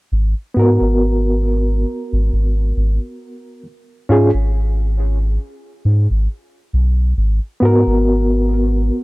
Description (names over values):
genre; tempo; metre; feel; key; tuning
trip hop; 68 BPM; 4/4; swing 56% on 16ths; G# minor; A4 = 441 Hz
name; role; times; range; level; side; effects
soft dub sub bass; bass; 0.1-8.9 s; G#1 to G#2; -15 LUFS; equal; none
bright reed electric piano; accompaniment; 0.5-9.0 s; B3 to A#4; -18 LUFS; equal; fast tremolo, harmonic tremolo, tape echo
room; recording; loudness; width
little or no reverb; dry, gritty hardware recording; -14 LUFS; side -22 dB against mid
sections
0.1-9.0 A section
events
none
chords
0.1 G#m7; 3.7 N.C.; 7.2 G#m7